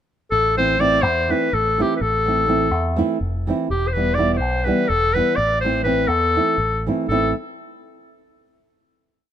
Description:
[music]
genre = balkan folk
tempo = 248 BPM (eighths)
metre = 7/8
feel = straight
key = A minor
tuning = A4 = 440 Hz
[part]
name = bright clarinet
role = melody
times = 0.3-7.3 s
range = G4 to D5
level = -19 LUFS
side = left 2 dB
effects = none
[part]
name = fingered electric bass with an envelope filter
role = bass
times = 0.3-7.3 s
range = E1 to E2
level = -24 LUFS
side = equal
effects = none
[part]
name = nylon-string guitar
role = accompaniment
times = 0.6-7.3 s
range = E3 to E4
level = -23 LUFS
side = right 3 dB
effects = none
[sound]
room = light reverb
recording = minimal, uncompressed stereo recording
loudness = -17 LUFS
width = side -10 dB against mid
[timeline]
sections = 0.3-7.1 A section; 7.1-8.8 final chord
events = none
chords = 0.3 Am; 3.7 Em; 5.4 Am

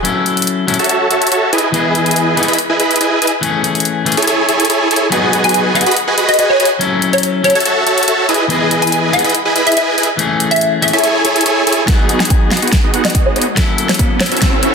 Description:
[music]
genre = future bass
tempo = 142 BPM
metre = 4/4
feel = half-time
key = unclear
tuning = A4 = 440 Hz
[part]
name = electric guitar at the edge of break-up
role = accompaniment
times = 0.0-14.3 s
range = E3 to D#5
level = -18 LUFS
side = left 4 dB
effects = spring reverb, sidechain pumping, digital delay
[part]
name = pop drum kit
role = drums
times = 0.0-14.7 s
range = hi-hat, snare drum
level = -17 LUFS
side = left 2 dB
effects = studio ambience
[part]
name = sub drop and riser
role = sound effects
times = 0.0, 12.9-14.7 s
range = none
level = -22 LUFS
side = equal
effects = none
[part]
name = supersaw chords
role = riff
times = 0.8-14.7 s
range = B3 to B5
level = -14 LUFS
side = right 2 dB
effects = sidechain pumping, low-pass filter, digital delay
[part]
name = hollow square pluck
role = melody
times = 5.4-14.4 s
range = C#5 to G#5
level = -16 LUFS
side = equal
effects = ensemble chorus, sidechain pumping, ping-pong delay
[part]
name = electronic kick drum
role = drums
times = 11.9-14.5 s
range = none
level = -14 LUFS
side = equal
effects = studio ambience
[sound]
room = moderate digital room reverb, RT60 1.1 s, digital ambience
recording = dense, heavily limited modern master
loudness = -11 LUFS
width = side -5 dB against mid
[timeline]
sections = 0.0-11.9 A section; 11.9-14.7 B section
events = build-up 11.9-14.7; drum fill 11.9-14.7; filter sweep on supersaw synth 11.9-14.7; filter sweep on synth pluck 11.9-14.7; riser 12.9-14.7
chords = 0.0 F#m7; 1.5 Emaj7; 3.4 Amaj7; 5.1 G#m7; 6.8 F#m7; 8.3 Emaj7; 10.2 Amaj7; 11.9 G#m7; 13.6 F#m7

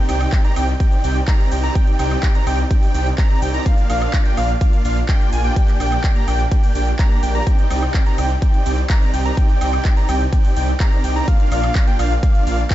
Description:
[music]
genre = EDM, festival progressive house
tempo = 126 BPM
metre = 4/4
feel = straight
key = C minor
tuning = A4 = 439 Hz
[part]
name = wide unison lead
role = arpeggios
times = 0.0-12.7 s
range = F5 to Bb5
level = -25 LUFS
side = equal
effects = sidechain pumping, ping-pong delay
[part]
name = supersaw chords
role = riff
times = 0.0-12.7 s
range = Bb3 to Bb5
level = -24 LUFS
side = right 2 dB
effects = sidechain pumping, ping-pong delay
[part]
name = wide detuned saw bass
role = bass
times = 0.1-12.6 s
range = Bb1 to C2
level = -20 LUFS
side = equal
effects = chorus, sidechain pumping
[part]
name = big-room dance drum kit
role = drums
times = 0.1-12.7 s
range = handclaps, hi-hat, shaker, woodblock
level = -30 LUFS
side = equal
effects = overdrive, small room ambience
[part]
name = electronic kick drum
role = drums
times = 0.3-12.7 s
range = none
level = -15 LUFS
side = equal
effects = overdrive, small room ambience
[sound]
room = digital ambience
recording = dark, warm production, nothing above 7.8 kHz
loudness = -15 LUFS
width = side -14 dB against mid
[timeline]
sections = 0.0-12.7 A section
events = none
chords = 0.0 Cmadd9; 3.7 Bb; 5.6 Gm/Bb; 7.5 Cmadd9; 11.3 Bb

